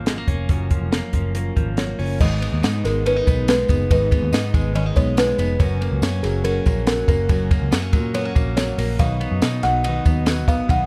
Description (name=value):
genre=jangly indie pop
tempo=142 BPM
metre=4/4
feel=straight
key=G# dorian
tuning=A4 = 440 Hz
part: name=fingerpicked steel-string acoustic guitar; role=accompaniment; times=0.0-10.9 s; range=G#2 to B4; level=-32 LUFS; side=equal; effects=none
part: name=direct-recorded clean electric guitar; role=arpeggios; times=0.0-10.9 s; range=F#2 to D#4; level=-30 LUFS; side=equal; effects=none
part: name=vintage muted picked electric bass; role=bass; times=0.0-10.9 s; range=E#1 to B2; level=-25 LUFS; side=equal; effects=none
part: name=compact cocktail drum kit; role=drums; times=0.1-10.8 s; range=crash cymbal, hi-hat, kick drum, ride cymbal, snare drum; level=-23 LUFS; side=equal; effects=none
part: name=buzzing kalimba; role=melody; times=1.8-10.9 s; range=G#4 to F#5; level=-26 LUFS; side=equal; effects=none
part: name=tambourine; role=percussion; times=2.2-10.8 s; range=none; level=-45 LUFS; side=equal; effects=none
room=light reverb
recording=dark, warm production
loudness=-20 LUFS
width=mono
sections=0.0-2.2 A section; 2.2-10.9 B section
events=none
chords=0.0 F#maj7; 2.2 G#m; 5.6 F#; 9.0 B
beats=0.07 | 0.49 0.92 1.35 1.78 | 2.20 2.63 3.06 3.48 | 3.90 4.33 4.75 5.18 | 5.60 6.03 6.45 6.87 | 7.30 7.72 8.14 8.57 | 8.99 9.41 9.84 10.26 | 10.69